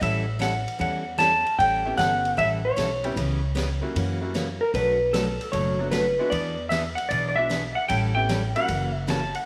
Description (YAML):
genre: country, western swing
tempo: 152 BPM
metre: 4/4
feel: swing 67% on 8ths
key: A mixolydian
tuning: A4 = 438 Hz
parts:
  - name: clean lap steel guitar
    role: melody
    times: 0.0-9.0 s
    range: A4 to A5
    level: -26 LUFS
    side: equal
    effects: none
  - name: picked steel-string acoustic guitar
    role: accompaniment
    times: 0.0-9.2 s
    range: B2 to A4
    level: -32 LUFS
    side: equal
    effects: none
  - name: upright bass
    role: bass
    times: 0.0-9.3 s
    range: F#1 to F#2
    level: -32 LUFS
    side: equal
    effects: none
  - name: swinging big-band drum kit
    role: drums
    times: 0.0-9.4 s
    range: hi-hat, ride cymbal, snare drum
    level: -38 LUFS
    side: equal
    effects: none
  - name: bright upright piano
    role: accompaniment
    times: 1.8-8.7 s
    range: F#3 to G4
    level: -36 LUFS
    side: equal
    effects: none
  - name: pedal steel guitar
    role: second line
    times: 9.1-9.5 s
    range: F#5 to A5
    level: -32 LUFS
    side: equal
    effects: none
room: moderate echo chamber reverb, RT60 1.8 s, studio reverb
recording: none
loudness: -24 LUFS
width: mono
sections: 0.0-9.5 A section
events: none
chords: 0.0 A9; 3.2 C#m7b5; 4.0 F#7b9; 4.7 Bm7; 6.3 E7; 7.9 A9; 8.7 F#7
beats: | 0.01 0.41 0.80 1.20 | 1.59 1.98 2.38 2.77 | 3.17 3.56 3.95 4.35 | 4.74 5.13 5.53 5.92 | 6.32 6.71 7.10 7.50 | 7.89 8.29 8.68 9.07